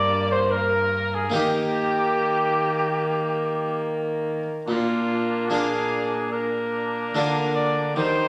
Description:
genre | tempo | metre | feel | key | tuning
classical, renaissance-style consort dance | 72 BPM | 4/4 | straight | Bb mixolydian | A4 = 441 Hz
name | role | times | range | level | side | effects
clear cornet | melody | 0.0-8.3 s | F4 to D5 | -30 LUFS | equal | none
warm cor anglais | second line | 0.0-8.3 s | D4 to D5 | -29 LUFS | equal | none
harpsichord | accompaniment | 0.0-8.3 s | G2 to G5 | -30 LUFS | equal | none
rich viola | accompaniment | 0.0-8.3 s | G3 to Bb3 | -31 LUFS | equal | none
warm cello | bass | 0.0-8.3 s | G2 to Eb3 | -34 LUFS | equal | none
room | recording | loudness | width
wet recital hall reverb, RT60 1.3 s | none | -24 LUFS | mono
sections
0.0-4.7 A section; 4.7-8.3 B section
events
none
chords
0.0 Gm; 1.3 Eb; 4.7 Bb

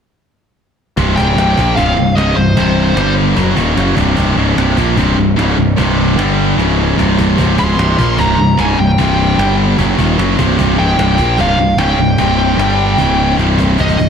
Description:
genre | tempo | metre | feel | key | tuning
heavy metal | 150 BPM | 4/4 | straight | C phrygian | A4 = 440 Hz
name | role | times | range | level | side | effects
high-gain distorted guitar | riff | 1.0-14.1 s | C2 to Bb3 | -13 LUFS | equal | distortion
fuzz picked electric bass | bass | 1.0-14.1 s | C1 to Bb1 | -15 LUFS | equal | overdrive
cajon | drums | 1.0-14.1 s | none | -23 LUFS | equal | none
high-gain lead guitar | melody | 1.2-3.1, 7.6-14.1 s | C5 to C6 | -17 LUFS | left 1 dB | distortion, tape echo
room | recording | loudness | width
moderate lush hall reverb, RT60 1.9 s, digital ambience | big arena sound | -10 LUFS | side -7 dB against mid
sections
1.0-13.8 A section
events
drum fill 6.6-7.4, 13.4-13.8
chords
1.0 C5; 3.0 G5; 3.4 Cm; 6.2 G5; 6.6 Db5; 7.0 C5; 9.4 G5; 9.8 Cm; 12.6 G5; 13.0 Db5; 13.4 C5

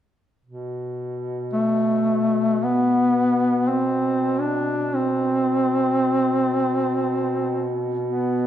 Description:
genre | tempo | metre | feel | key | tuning
caucasian folk, Caucasian lament | free time | none | none | B phrygian | A4 = 440 Hz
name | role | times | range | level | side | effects
mellow duduk | drone | 0.5-8.5 s | B2 | -27 LUFS | right 1 dB | none
mellow duduk | melody | 1.5-8.5 s | A3 to D4 | -20 LUFS | equal | none
room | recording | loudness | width
wet recital hall reverb, RT60 1.5 s | recorded in a church or concert hall | -19 LUFS | side -10 dB against mid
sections
0.5-8.5 A section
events
none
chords
none

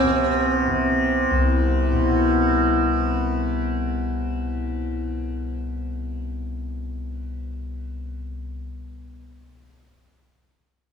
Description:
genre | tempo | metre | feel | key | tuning
indian classical, Hindustani | free time | none | none | unclear | A4 = 440 Hz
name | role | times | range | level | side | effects
sitar | melody | 0.0-3.9 s | C4 | -27 LUFS | right 2 dB | none
tanpura | drone | 0.0-9.1 s | C2 to C3 | -22 LUFS | left 1 dB | none
room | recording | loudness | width
wet large studio reverb, RT60 1.1 s | band playing live in one room, small room ambience | -21 LUFS | side -6 dB against mid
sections
0.0-2.5 A section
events
none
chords
none

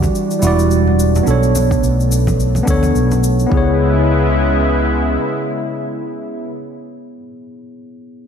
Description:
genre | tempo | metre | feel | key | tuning
sunset chillout | 107 BPM | 4/4 | swing 57% on 16ths | C# minor | A4 = 439 Hz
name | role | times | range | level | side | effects
tine electric piano | accompaniment | 0.0-8.3 s | G3 to D5 | -19 LUFS | moving between left 4 dB and right 4 dB | auto-pan, ping-pong delay
lush unison pad | sustained chords | 0.0-6.5 s | C#3 to F#4 | -20 LUFS | equal | chorus
mellow fretless electric bass | bass | 0.0-5.2 s | E1 to D2 | -15 LUFS | equal | tube saturation, lush chorus
cabasa | drums | 0.0-3.5 s | none | -29 LUFS | left 5 dB | overdrive
electronic kick drum | drums | 0.0-3.6 s | none | -19 LUFS | equal | overdrive
congas | percussion | 0.0-3.2 s | none | -26 LUFS | right 2 dB | none
room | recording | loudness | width
moderate lush hall reverb, RT60 2.4 s | bright 1980s-style digital production | -12 LUFS | side -7 dB against mid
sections
0.0-3.5 A section; 3.5-5.8 B section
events
filter sweep on analog synth pad 0.0-3.5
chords
0.0 Em9; 1.3 Bm9; 3.5 C#m7

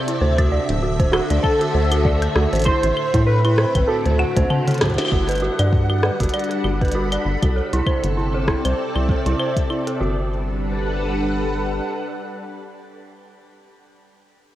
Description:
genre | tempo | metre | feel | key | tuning
IDM | 98 BPM | 4/4 | swing 56% on 16ths | G major | A4 = 440 Hz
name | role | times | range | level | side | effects
soft string machine | sustained chords | 0.0-13.2 s | A2 to B5 | -25 LUFS | left 1 dB | phaser, ensemble chorus, shimmer reverb
dark detuned synth bell | arpeggios | 0.1-10.3 s | E4 to A5 | -25 LUFS | right 2 dB | chorus, low-pass filter, tape echo, shimmer reverb
glitchy drum kit | drums | 0.1-10.0 s | claves, hi-hat, rim click, snare drum, toms | -24 LUFS | left 1 dB | digital delay
rubbery square bass | bass | 0.2-11.8 s | D1 to A2 | -20 LUFS | equal | none
electronic kick drum | drums | 0.4-9.7 s | none | -21 LUFS | equal | none
warbly lo-fi synth keys | melody | 1.1-4.8 s | F#4 to C5 | -23 LUFS | equal | chorus, digital delay, shimmer reverb
room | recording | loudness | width
moderate echo chamber reverb, RT60 1.8 s | worn, warbling old tape, cassette tape, warbly pitch drift | -17 LUFS | side -14 dB against mid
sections
0.0-5.1 A section; 5.1-10.0 B section; 10.0-12.5 C section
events
drum fill 4.2-5.1; band accent 5.0-5.3; filter sweep on synth bell 5.1-10.0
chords
0.2 D7; 2.7 Am7; 3.9 D7; 5.1 Gmaj7

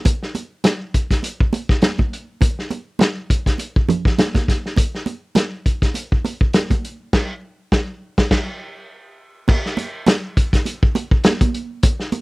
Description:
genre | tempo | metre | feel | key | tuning
funk | 102 BPM | 4/4 | swing 56% on 16ths | none | none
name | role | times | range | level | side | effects
vintage drum kit | drums | 0.1-12.2 s | crash cymbal, hi-hat, kick drum, snare drum | -16 LUFS | equal | none
congas | percussion | 0.1-12.2 s | none | -23 LUFS | right 4 dB | none
room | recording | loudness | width
little or no reverb | dry, close 1970s-style studio recording | -17 LUFS | side -22 dB against mid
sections
0.0-9.5 A section; 9.5-12.2 B section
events
band accent 7.1-9.5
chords
none

